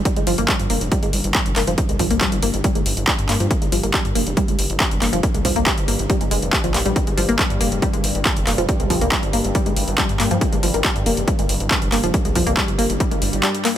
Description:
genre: driving peak-time techno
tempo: 139 BPM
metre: 4/4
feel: straight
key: unclear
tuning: A4 = 440 Hz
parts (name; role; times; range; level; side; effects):
- analog drone; drone; 0.0-13.8 s; G2; -28 LUFS; equal; chorus, sidechain pumping
- analog pluck; riff; 0.1-13.7 s; F3 to G4; -23 LUFS; left 1 dB; chorus, phaser, sidechain pumping, digital delay
- electronic kick drum; drums; 0.1-13.1 s; none; -21 LUFS; equal; overdrive, studio reverb
- techno drum kit; drums; 0.1-13.7 s; handclaps, hi-hat; -22 LUFS; equal; overdrive, sidechain pumping on hats, studio reverb
- gritty driven synth bass; bass; 0.2-13.4 s; F1 to G2; -24 LUFS; equal; sidechain pumping
- swell; sound effects; 13.1-13.8 s; none; -28 LUFS; right 4 dB; none
room: little or no reverb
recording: none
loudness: -16 LUFS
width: side -11 dB against mid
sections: 0.0-13.8 A section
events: swell 13.1-13.8; kick drops out 13.4-13.8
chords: 0.0 Fsus4

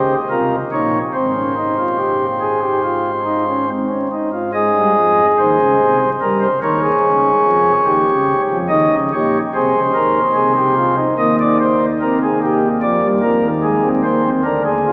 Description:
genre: classical, baroque-style 3-part fugue for pipe organ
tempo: 72 BPM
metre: 4/4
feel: straight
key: Ab major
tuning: A4 = 441 Hz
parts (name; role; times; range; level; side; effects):
- pipe organ, flutes; solo; 0.0-14.9 s; Ab1 to Eb5; -16 LUFS; equal; none
room: wet cathedral reverb, RT60 6.5 s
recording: recorded in a church or concert hall, vinyl crackle, small speaker sound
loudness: -16 LUFS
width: mono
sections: 0.0-4.5 A section; 4.5-14.9 B section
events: none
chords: 0.0 Eb; 1.1 Ab; 6.2 Gdim; 7.9 Eb7; 9.5 Ab/C; 11.2 Eb; 12.8 Ddim

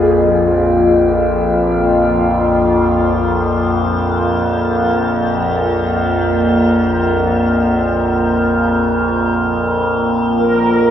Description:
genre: dark ambient drone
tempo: free time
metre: none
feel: none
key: unclear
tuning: A4 = 440 Hz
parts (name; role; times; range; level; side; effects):
- mellow horn-like synth lead; melody; 0.0-0.5, 10.4-10.9 s; Ab4 to Bb4; -19 LUFS; right 2 dB; ensemble chorus, diffuse ambient delay
- deep dark ambient pad; sustained chords; 0.0-10.9 s; F3 to F5; -19 LUFS; left 1 dB; chorus, built-in reverb
- overtone-sweeping drone; drone; 0.0-10.9 s; Bb1 to F2; -15 LUFS; left 1 dB; chorus, built-in reverb
- metallic inharmonic drone; texture; 0.0-10.9 s; F3 to Bb4; -19 LUFS; equal; chorus, built-in reverb
room: wet huge ambient reverb, RT60 7.5 s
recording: none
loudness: -12 LUFS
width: side -9 dB against mid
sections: 0.0-10.9 A section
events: fade-in on soft synth lead 0.0-10.9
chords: 0.0 Bb5

